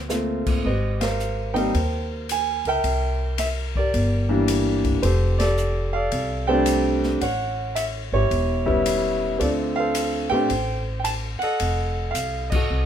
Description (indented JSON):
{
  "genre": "jazz piano trio",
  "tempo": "110 BPM",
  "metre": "4/4",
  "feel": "swing 67% on 8ths",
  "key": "unclear",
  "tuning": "A4 = 435 Hz",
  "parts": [
    { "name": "warm concert grand piano", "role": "melody", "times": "0.0-12.9 s", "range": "E3 to A5", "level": "-23 LUFS", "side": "right 1 dB", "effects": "none" },
    { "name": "upright bass", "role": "bass", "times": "0.0-12.9 s", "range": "E1 to A2", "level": "-25 LUFS", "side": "equal", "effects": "none" },
    { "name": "open jazz drum kit", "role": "drums", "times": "0.1-12.6 s", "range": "crash cymbal, hi-hat, kick drum, ride cymbal, snare drum", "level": "-30 LUFS", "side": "left 2 dB", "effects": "none" }
  ],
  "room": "light reverb",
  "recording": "minimal, uncompressed stereo recording",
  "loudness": "-20 LUFS",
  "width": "side -9 dB against mid",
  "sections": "0.6-12.9 A section",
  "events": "band accent 0.9, 5.3, 12.4",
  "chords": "0.0 Gm11 (rootless); 0.6 Abmaj9; 2.8 C9; 5.0 F69; 7.2 A7; 9.4 Dm7; 11.6 F7b9"
}